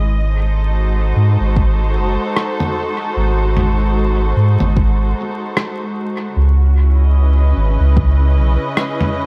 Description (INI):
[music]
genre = ambient dub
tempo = 75 BPM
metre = 4/4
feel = swing 59% on 16ths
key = unclear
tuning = A4 = 440 Hz
[part]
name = muted studio string section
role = sustained chords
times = 0.0-9.3 s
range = C#3 to D#5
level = -24 LUFS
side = equal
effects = none
[part]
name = soft dub sub bass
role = bass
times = 0.0-8.6 s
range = F#1 to G#2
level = -15 LUFS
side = equal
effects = none
[part]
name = electronic kick drum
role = drums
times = 1.6-8.2 s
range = none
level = -19 LUFS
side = equal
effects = none
[part]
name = lo-fi sampler-style drum kit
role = drums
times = 2.4-9.1 s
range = rim click, toms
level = -23 LUFS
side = equal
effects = overdrive, dub echo
[sound]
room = little or no reverb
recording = vinyl crackle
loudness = -16 LUFS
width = mono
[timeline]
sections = 0.0-9.3 A section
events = none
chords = 0.0 G#7b9; 6.4 C#m7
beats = 0.77 1.57 2.37 | 3.17 3.97 4.77 5.57 | 6.37 7.17 7.97 8.77